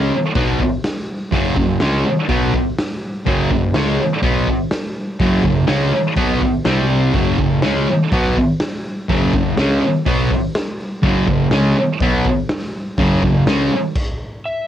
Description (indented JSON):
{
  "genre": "garage rock duo or trio",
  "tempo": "124 BPM",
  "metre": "4/4",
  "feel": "straight",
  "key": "unclear",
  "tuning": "A4 = 440 Hz",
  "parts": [
    { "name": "thick fuzz guitar", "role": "riff", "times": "0.0-13.8 s", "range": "F#2 to C#4", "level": "-16 LUFS", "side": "equal", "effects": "distortion" },
    { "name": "fuzz picked electric bass", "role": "bass", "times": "0.0-13.7 s", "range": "F#1 to C#2", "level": "-22 LUFS", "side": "equal", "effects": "overdrive" },
    { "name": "raw garage drum kit", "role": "drums", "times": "0.3-14.1 s", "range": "crash cymbal, hi-hat, kick drum, snare drum", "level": "-21 LUFS", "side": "equal", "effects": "cassette tape" },
    { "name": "overdriven slide guitar", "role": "melody", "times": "14.5-14.7 s", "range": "E5", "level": "-21 LUFS", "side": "left 2 dB", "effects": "cassette tape" }
  ],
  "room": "little or no reverb",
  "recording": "home recording on cassette",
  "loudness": "-15 LUFS",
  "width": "side -11 dB against mid",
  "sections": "0.0-14.7 A section",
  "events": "stop 14.0-14.7",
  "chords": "0.0 F#5; 6.7 C5; 7.1 F#5"
}